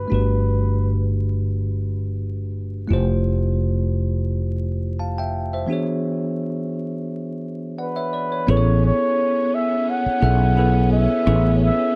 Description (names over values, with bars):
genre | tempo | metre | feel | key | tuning
R&B | 86 BPM | 4/4 | swing 53% on 16ths | A major from 8.5 s | A4 = 441 Hz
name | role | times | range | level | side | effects
breathy flugelhorn | melody | 0.0-1.1, 7.8-12.0 s | B4 to F#5 | -25 LUFS | equal | none
bell-like tine electric piano | accompaniment | 0.0-12.0 s | E3 to A5 | -27 LUFS | equal | none
mellow fretless electric bass | bass | 0.0-11.7 s | F1 to B1 | -22 LUFS | equal | none
warm studio string section | sustained chords | 8.5-12.0 s | B3 to C#4 | -31 LUFS | equal | none
room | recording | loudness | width
small room ambience | dry, close 1970s-style studio recording, vinyl crackle | -21 LUFS | mono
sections
0.0-8.5 A section; 8.5-12.0 B section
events
break 5.7-8.5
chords
0.0 Gmaj9; 2.9 Fmaj9; 5.7 E13; 8.5 Amaj9